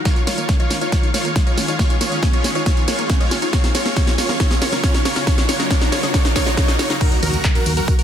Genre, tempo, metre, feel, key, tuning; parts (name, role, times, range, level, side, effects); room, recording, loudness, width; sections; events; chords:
uplifting trance; 138 BPM; 4/4; straight; A4 = 441 Hz
shimmering ambient pad; sustained chords; 0.0-8.0 s; Db3 to F5; -27 LUFS; equal; chorus, built-in reverb, sidechain pumping
riser and impact; sound effects; 0.0-8.0 s; -28 LUFS; right 1 dB
big supersaw lead; melody; 0.1-8.0 s; F4 to Db5; -24 LUFS; equal; sidechain pumping, low-pass filter, ping-pong delay
wide unison pluck; second line; 0.1-8.0 s; Bb4 to Db5; -29 LUFS; right 1 dB; sidechain pumping, ping-pong delay
tight sequenced synth; arpeggios; 0.1-7.0 s; Bb3 to Eb5; -30 LUFS; left 5 dB; chorus, cassette tape, sidechain pumping, ping-pong delay
big-room dance drum kit; drums; 0.1-8.0 s; crash cymbal, handclaps, hi-hat, snare drum, tambourine; -22 LUFS; equal
electronic kick drum; drums; 0.1-8.0 s; -17 LUFS; equal
solid FM bass; bass; 7.2-7.8 s; Eb2; -20 LUFS; equal; sidechain pumping
light reverb, digital ambience; dense, heavily limited modern master; -15 LUFS; side -9 dB against mid
0.0-7.0 A section; 7.0-8.0 B section
build-up 0.0-7.0; drum fill 0.0-7.0; riser 0.0-7.0; filter sweep on synth arpeggio sound 0.0-7.0; filter sweep on synth pluck 0.0-7.0; drop 7.0-8.0; impact 7.0-8.0
0.1 Dbadd9; 3.5 Gb; 7.0 Ebmadd9